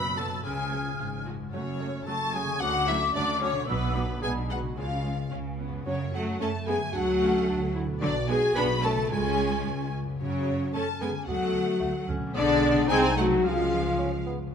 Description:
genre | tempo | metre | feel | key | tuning
cinematic, playful, whimsical film cue | 111 BPM | 2/4 | straight | F# minor | A4 = 439 Hz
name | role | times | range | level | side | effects
dark studio violin section | second line | 0.0-14.3 s | B4 to B5 | -33 LUFS | left 3 dB | none
mellow large flute ensemble | second line | 0.0-14.3 s | C#5 to E#6 | -34 LUFS | left 2 dB | none
mellow French horn section | sustained chords | 0.0-14.3 s | E#3 to B4 | -30 LUFS | left 3 dB | none
concert harp | arpeggios | 0.0-14.5 s | F#2 to D5 | -37 LUFS | left 10 dB | none
dark studio double bass section | bass | 0.0-14.3 s | F#1 to F#2 | -33 LUFS | right 4 dB | none
rich studio cello section | bass | 0.0-14.3 s | F#2 to B3 | -34 LUFS | right 3 dB | none
warm studio violin section | melody | 0.2-14.3 s | C#4 to B5 | -38 LUFS | left 3 dB | none
dark clarinet | second line | 0.2-14.3 s | A3 to A4 | -37 LUFS | left 1 dB | none
dark studio viola section | accompaniment | 0.2-14.3 s | E#3 to D4 | -34 LUFS | right 2 dB | none
mellow bassoon | accompaniment | 14.0-14.4 s | B3 to C#4 | -37 LUFS | right 2 dB | none
room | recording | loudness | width
moderate scoring stage reverb, RT60 1.7 s | close, detailed microphones | -24 LUFS | side -7 dB against mid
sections
0.0-5.9 A section; 5.9-14.5 B section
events
none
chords
0.4 C#; 1.5 F#m; 2.6 Dmaj7; 3.7 Bm; 4.2 G#dim/B; 4.8 C#; 5.9 F#m; 7.0 Dmaj7; 8.0 Bm; 9.1 C#; 10.2 F#m; 11.3 Dmaj7; 12.3 G#dim/B; 12.9 Cdim7; 13.4 C#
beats
| 0.44 0.98 | 1.53 2.07 | 2.61 3.15 | 3.68 4.22 | 4.77 5.32 | 5.87 6.41 | 6.95 7.49 | 8.03 8.56 | 9.11 9.66 | 10.20 10.74 | 11.28 11.81 | 12.35 12.89 | 13.44 13.99 | 14.54

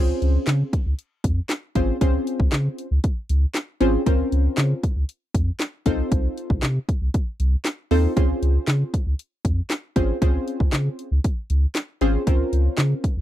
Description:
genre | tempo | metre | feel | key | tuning
dance-pop | 117 BPM | 4/4 | straight | Db major | A4 = 441 Hz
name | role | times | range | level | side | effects
punchy chord stab | accompaniment | 0.0-13.1 s | C4 to C5 | -24 LUFS | equal | chorus, sidechain pumping
warm sub bass | bass | 0.0-13.2 s | Ab1 to Db3 | -20 LUFS | equal | sidechain pumping
house drum kit | drums | 0.2-13.2 s | handclaps, hi-hat, kick drum, snare drum | -22 LUFS | equal | overdrive
room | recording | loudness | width
little or no reverb | dry, close 1970s-style studio recording | -20 LUFS | side -13 dB against mid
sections
0.0-13.2 A section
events
none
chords
0.0 Dbmaj7; 4.1 Bbmadd9/Db; 5.9 F7/C; 8.2 Dbmaj7; 12.3 Bbmadd9/Db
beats
0.47 0.99 1.50 | 2.01 2.53 3.04 3.55 | 4.07 4.58 5.09 5.60 | 6.12 6.63 7.14 7.65 | 8.17 8.68 9.19 9.71 | 10.22 10.73 11.24 11.76 | 12.27 12.78

